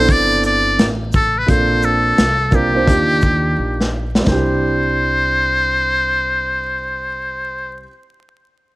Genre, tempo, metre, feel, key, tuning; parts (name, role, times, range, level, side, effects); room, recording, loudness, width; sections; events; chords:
hip hop, jazz-hop; 86 BPM; 4/4; swing 65% on 16ths; C major; A4 = 440 Hz
trumpet with metal mute; melody; 0.0-7.8 s; G4 to D5; -17 LUFS; left 1 dB
dark baby grand piano; accompaniment; 0.0-7.9 s; G3 to C5; -20 LUFS; right 2 dB
upright bass; bass; 0.0-7.8 s; G1 to Eb2; -22 LUFS; equal
crunchy breakbeat drum kit; drums; 0.1-4.5 s; hi-hat, kick drum, shaker, snare drum; -17 LUFS; equal
light reverb, studio reverb; vinyl crackle; -14 LUFS; side -20 dB against mid
0.0-4.3 A section; 4.3-7.1 B section
drum fill 3.6-4.3
0.0 Cmaj9; 1.5 Bbmaj9; 2.9 Ebmaj9; 4.3 Cadd9